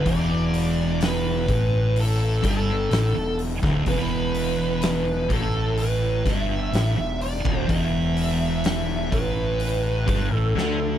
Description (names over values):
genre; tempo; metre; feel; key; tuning
stoner and doom metal; 63 BPM; 4/4; straight; unclear; A4 = 441 Hz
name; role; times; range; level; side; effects
fuzz lead guitar; melody; 0.0-11.0 s; A4 to E5; -27 LUFS; right 1 dB; wah, distortion, tape echo
thick fuzz guitar; riff; 0.0-11.0 s; D2 to D3; -28 LUFS; left 9 dB; distortion
thick fuzz guitar; riff; 0.0-11.0 s; D2 to D3; -26 LUFS; right 4 dB; distortion
fuzz fingered electric bass; bass; 0.0-11.0 s; D1 to D2; -28 LUFS; left 1 dB; overdrive
oversized low-tuned drum kit; drums; 0.1-10.8 s; hi-hat, kick drum, snare drum; -28 LUFS; left 1 dB; none
room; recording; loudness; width
little or no reverb; none; -20 LUFS; side -10 dB against mid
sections
0.0-11.0 A section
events
drum fill 10.6-11.0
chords
0.0 E5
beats
| 0.06 1.01 1.96 2.92 | 3.87 4.83 5.78 6.74 | 7.69 8.65 9.60 10.55